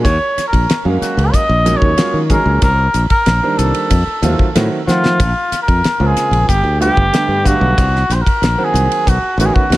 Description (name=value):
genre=electric jazz fusion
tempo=93 BPM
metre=4/4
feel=straight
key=unclear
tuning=A4 = 443 Hz
part: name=trumpet with cup mute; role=melody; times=0.0-9.8 s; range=F4 to Eb5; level=-16 LUFS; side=equal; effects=tape echo
part: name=clear concert grand piano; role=accompaniment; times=0.0-9.8 s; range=Db3 to Gb5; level=-20 LUFS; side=right 2 dB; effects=none
part: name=modern bright fingered electric bass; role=bass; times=0.0-9.8 s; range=G1 to F3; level=-15 LUFS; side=equal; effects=none
part: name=damped 70s drum kit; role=drums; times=0.0-9.8 s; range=hi-hat, kick drum, ride cymbal, snare drum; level=-18 LUFS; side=equal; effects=none
room=small room ambience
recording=none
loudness=-12 LUFS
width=side -17 dB against mid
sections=0.0-9.8 A section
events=drum fill 4.9-5.2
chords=0.0 Ebm11; 2.6 Cm7; 3.9 F7b9; 5.2 Bbm9; 6.5 G7; 7.8 Cm7b5; 9.1 B9